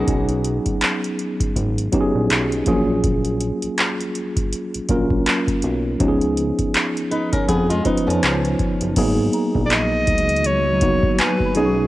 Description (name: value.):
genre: contemporary R&B.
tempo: 81 BPM.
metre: 4/4.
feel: swing 58% on 16ths.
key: unclear.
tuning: A4 = 444 Hz.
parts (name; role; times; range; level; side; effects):
tine electric piano; accompaniment; 0.0-11.9 s; F3 to Cb5; -21 LUFS; equal; overdrive, fast stereo tremolo, cassette tape.
flamenco guitar; arpeggios; 0.0-1.0, 7.1-8.9 s; F3 to Cb5; -25 LUFS; left 1 dB; cassette tape, analog delay.
fat analog bass; bass; 0.0-11.9 s; Gb1 to F2; -23 LUFS; equal; none.
booming analog drum machine; drums; 0.1-11.8 s; crash cymbal, handclaps, hi-hat, kick drum; -22 LUFS; equal; overdrive, cassette tape.
granular cloud pad; sustained chords; 9.5-11.9 s; Eb3 to Gb4; -28 LUFS; equal; none.
small celesta; texture; 9.3-11.9 s; Ab5 to Db6; -32 LUFS; left 2 dB; cassette tape, analog delay.
breathy alto saxophone; melody; 9.7-11.9 s; G#4 to Eb5; -20 LUFS; equal; cassette tape.
room: light reverb, digital ambience.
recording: home recording on cassette.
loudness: -17 LUFS.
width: side -16 dB against mid.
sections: 0.0-9.0 A section; 9.0-11.9 B section.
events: none.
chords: 0.0 B6; 2.7 Gbmaj9/Bb; 6.0 Db7; 9.0 Abm9.